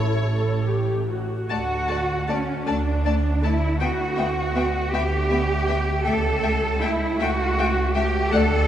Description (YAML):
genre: classical, slow romantic movement for string orchestra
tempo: 53 BPM (dotted quarters)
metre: 6/8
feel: uneven beats, rubato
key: D major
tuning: A4 = 440 Hz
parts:
  - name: rich symphonic violin section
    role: melody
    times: 0.0-8.4 s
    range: C#5 to A5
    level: -32 LUFS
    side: left 4 dB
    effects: none
  - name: rich symphonic violin section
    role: second line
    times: 0.0-8.4 s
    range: C#5 to E5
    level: -32 LUFS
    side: left 4 dB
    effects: none
  - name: dark symphonic viola section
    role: accompaniment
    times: 0.0-8.4 s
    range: A3 to A4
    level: -29 LUFS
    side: left 1 dB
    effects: none
  - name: bright symphonic double bass section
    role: bass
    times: 0.0-8.7 s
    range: A1 to D2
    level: -25 LUFS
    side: right 2 dB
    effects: none
  - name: rich symphonic cello section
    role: bass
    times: 0.0-8.7 s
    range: A2 to A4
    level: -23 LUFS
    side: right 1 dB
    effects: none
room: wet church reverb, RT60 3.4 s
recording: recorded in a church or concert hall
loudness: -20 LUFS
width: side -10 dB against mid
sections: 0.0-1.5 A section; 1.5-8.7 B section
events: none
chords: 0.0 A; 1.5 D; 3.8 Em7/D (rootless); 6.0 A7/C#